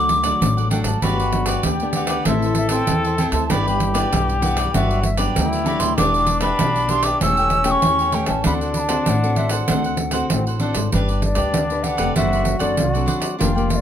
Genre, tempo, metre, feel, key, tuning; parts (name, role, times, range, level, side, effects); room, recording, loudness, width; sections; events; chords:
samba and choro; 97 BPM; 4/4; straight; G major; A4 = 440 Hz
hollow wooden flute; melody; 0.0-13.8 s; D5 to E6; -22 LUFS; right 1 dB
bright trombone; second line; 0.0-13.8 s; C4 to A4; -25 LUFS; left 3 dB
cavaquinho; accompaniment; 0.0-13.7 s; D4 to G5; -28 LUFS; right 1 dB
nylon-string guitar; accompaniment; 0.0-13.8 s; G2 to B4; -25 LUFS; left 3 dB
upright bass; bass; 0.0-13.8 s; E1 to E2; -23 LUFS; equal
pandeiro; percussion; 0.1-13.8 s; -24 LUFS; right 3 dB
light reverb; close, detailed microphones; -17 LUFS; side -9 dB against mid
0.0-10.9 A section; 10.9-13.8 B section
0.0 D; 1.0 Gmaj7; 2.3 Am; 3.5 Em7/G; 4.7 Gmaj7; 6.0 Em7; 7.2 A7/E; 8.5 D7; 10.9 G; 12.2 D7/F#